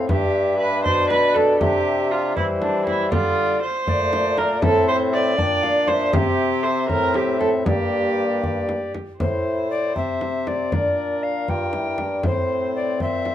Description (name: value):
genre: classical, renaissance-style consort dance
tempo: 79 BPM (dotted quarters)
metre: 6/8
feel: straight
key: G dorian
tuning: A4 = 440 Hz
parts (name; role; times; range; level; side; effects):
- alto recorder; melody; 0.0-13.3 s; C5 to A5; -27 LUFS; left 3 dB; none
- clear trombone; accompaniment; 0.0-13.3 s; G3 to F4; -25 LUFS; left 2 dB; none
- warm bassoon; bass; 0.0-13.3 s; G2 to E3; -25 LUFS; equal; none
- rich viola; second line; 0.1-13.3 s; D4 to D5; -23 LUFS; right 2 dB; none
- frame drum; percussion; 0.1-13.3 s; none; -26 LUFS; equal; none
room: moderate stone room reverb, RT60 1.1 s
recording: dark, warm production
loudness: -18 LUFS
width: side -11 dB against mid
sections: 0.0-9.2 A section; 9.2-13.3 B section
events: none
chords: 0.1 G; 1.6 C; 3.1 Dm; 4.6 Am; 6.1 C; 7.7 Gm; 9.2 Am; 10.7 Gm/Bb; 12.2 Am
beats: | 0.09 0.84 | 1.60 2.35 | 3.11 3.87 | 4.62 5.38 | 6.13 6.89 | 7.66 8.43 | 9.20 9.96 | 10.72 11.48 | 12.24 13.00